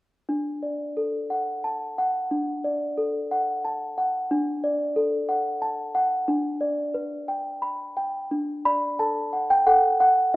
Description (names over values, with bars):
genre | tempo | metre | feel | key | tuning
classical, lullaby for celesta | 90 BPM | 3/4 | rubato | D major | A4 = 440 Hz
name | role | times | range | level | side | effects
small celesta | solo | 0.3-10.4 s | D4 to B5 | -22 LUFS | equal | none
room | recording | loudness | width
moderate plate reverb, RT60 2.3 s | rough home demo mix | -23 LUFS | side -20 dB against mid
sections
0.3-8.3 A section; 8.3-10.4 B section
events
none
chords
0.3 D; 6.3 G/D; 8.3 D